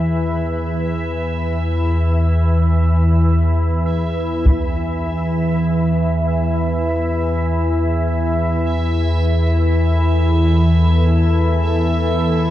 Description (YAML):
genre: dark ambient drone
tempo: free time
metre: none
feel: none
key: unclear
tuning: A4 = 441 Hz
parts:
  - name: deep dark ambient pad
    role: sustained chords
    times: 0.0-12.5 s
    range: E3 to B5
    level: -24 LUFS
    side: left 1 dB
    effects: chorus, built-in reverb
  - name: organ-like drone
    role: drone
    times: 0.0-12.5 s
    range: E2 to E3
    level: -16 LUFS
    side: equal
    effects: ensemble chorus, built-in reverb, phaser
  - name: bubbling stepped-filter texture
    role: texture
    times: 0.0-12.5 s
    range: E5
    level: -27 LUFS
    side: right 1 dB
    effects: chorus, built-in reverb
  - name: taiko ensemble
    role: percussion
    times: 4.5-4.7 s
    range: none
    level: -16 LUFS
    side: equal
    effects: low-pass filter on perc
room: moderate huge ambient reverb, RT60 9.3 s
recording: dark, warm production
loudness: -15 LUFS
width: side -13 dB against mid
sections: 0.0-12.5 A section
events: fade-in on ambient pad 0.0-12.5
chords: 0.0 E5